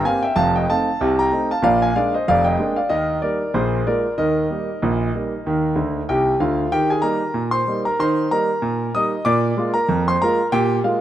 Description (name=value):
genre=ragtime piano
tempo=95 BPM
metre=2/4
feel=swing 54% on 16ths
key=Eb major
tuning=A4 = 440 Hz
part: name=clear concert grand piano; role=solo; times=0.0-11.0 s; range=F1 to Eb6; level=-17 LUFS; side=equal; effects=none
room=light reverb, studio ambience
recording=rough home demo mix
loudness=-17 LUFS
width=side -12 dB against mid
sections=0.0-6.7 A section; 6.7-11.0 B section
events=grand piano fill 5.8-6.7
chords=0.4 F7; 1.6 Bb7; 2.9 Eb; 3.5 Bb7; 4.2 Eb; 9.2 Bb7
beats=| 0.39 1.02 | 1.65 2.28 | 2.91 3.54 | 4.18 4.82 | 5.45 6.09 | 6.72 7.35 | 7.99 8.62 | 9.25 9.88 | 10.51